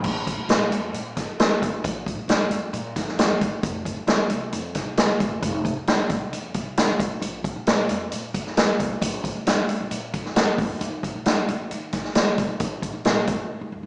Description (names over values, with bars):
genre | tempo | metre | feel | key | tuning
uptempo 1960s-style soul | 134 BPM | 4/4 | straight | unclear | A4 = 439 Hz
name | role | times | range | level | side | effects
upright bass | bass | 0.0-13.9 s | F1 to Eb3 | -32 LUFS | equal | none
swinging big-band drum kit | drums | 0.0-13.4 s | crash cymbal, hi-hat, kick drum, snare drum | -21 LUFS | equal | none
room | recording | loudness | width
light reverb | band playing live in one room, small speaker sound | -21 LUFS | side -31 dB against mid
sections
0.0-13.9 A section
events
none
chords
none